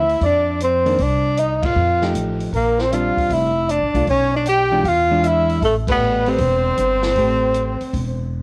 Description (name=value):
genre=jazz, small-group swing and bop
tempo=155 BPM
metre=4/4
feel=swing 66% on 8ths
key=A minor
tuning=A4 = 438 Hz
part: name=breathy tenor saxophone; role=melody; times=0.0-8.3 s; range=A3 to G4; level=-21 LUFS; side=equal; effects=cassette tape
part: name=mellow trumpet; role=second line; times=0.0-8.3 s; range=A4 to G5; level=-26 LUFS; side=equal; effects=cassette tape
part: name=hollow-body jazz guitar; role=accompaniment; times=0.0-7.8 s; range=D#3 to B4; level=-26 LUFS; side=equal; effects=cassette tape
part: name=upright bass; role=bass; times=0.0-8.4 s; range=E1 to F2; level=-25 LUFS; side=equal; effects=none
part: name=open jazz drum kit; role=drums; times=0.1-8.1 s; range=hi-hat, kick drum, ride cymbal, snare drum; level=-32 LUFS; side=equal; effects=cassette tape
room=light reverb, small room ambience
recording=home recording on cassette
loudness=-18 LUFS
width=mono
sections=0.0-8.4 A section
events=band accent 1.6, 5.8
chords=0.0 Dm9; 1.0 Cmadd9; 1.8 F9; 2.5 Bb69; 4.1 Bdim; 4.8 E7b9; 5.6 Am9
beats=0.21 0.60 | 0.98 1.37 1.75 2.14 | 2.53 2.91 3.30 3.68 | 4.07 4.46 4.84 5.23 | 5.61 6.00 6.39 6.77 | 7.16 7.55 7.93 8.32